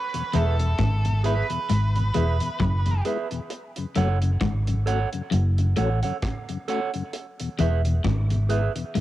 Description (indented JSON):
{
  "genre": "roots reggae",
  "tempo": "66 BPM",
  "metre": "4/4",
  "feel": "swing 57% on 16ths",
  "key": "unclear",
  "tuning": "A4 = 440 Hz",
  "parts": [
    { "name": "octave-fuzz lead guitar", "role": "melody", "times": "0.0-3.0 s", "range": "A4 to B4", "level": "-30 LUFS", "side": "right 2 dB", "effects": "distortion, cassette tape, dub echo" },
    { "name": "mellow tonewheel organ", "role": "accompaniment", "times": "0.1-8.8 s", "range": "E2 to F#4", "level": "-32 LUFS", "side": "left 5 dB", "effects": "chorus vibrato, slow rotary speaker, cassette tape" },
    { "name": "deep reggae drum kit", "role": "drums", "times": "0.1-9.0 s", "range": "hi-hat, kick drum, rim click", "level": "-32 LUFS", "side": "right 1 dB", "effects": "cassette tape" },
    { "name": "clean electric guitar", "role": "accompaniment", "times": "0.3-8.7 s", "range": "G#4 to F#5", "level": "-31 LUFS", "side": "right 7 dB", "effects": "cassette tape, dub echo" },
    { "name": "electric guitar at the edge of break-up", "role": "riff", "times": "0.3-9.0 s", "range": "E2 to A2", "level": "-28 LUFS", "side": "left 5 dB", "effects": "tremolo, cassette tape" },
    { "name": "vintage muted fingered electric bass", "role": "bass", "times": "0.3-9.0 s", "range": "E1 to A1", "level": "-22 LUFS", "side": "equal", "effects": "none" }
  ],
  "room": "light reverb, small room ambience",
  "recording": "home recording on cassette",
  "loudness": "-21 LUFS",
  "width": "side -14 dB against mid",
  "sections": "0.0-9.0 A section",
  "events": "none",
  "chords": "0.0 E; 3.5 F#m; 7.1 E"
}